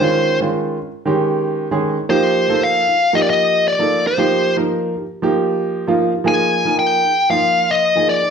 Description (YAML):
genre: jazz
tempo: 115 BPM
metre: 4/4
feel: straight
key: Eb mixolydian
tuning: A4 = 440 Hz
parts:
  - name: bluesy overdriven lead guitar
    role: melody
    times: 0.0-8.3 s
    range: C5 to Ab5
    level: -15 LUFS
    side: left 2 dB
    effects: distortion
  - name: clear concert grand piano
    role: accompaniment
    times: 0.0-8.3 s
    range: Eb3 to Bb4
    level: -18 LUFS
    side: right 2 dB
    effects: none
room: wet large studio reverb, RT60 0.9 s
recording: band playing live in one room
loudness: -14 LUFS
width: side -6 dB against mid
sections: 0.0-8.3 A section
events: none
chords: 0.0 Eb9sus4; 2.1 F9sus4; 6.3 Ebsus4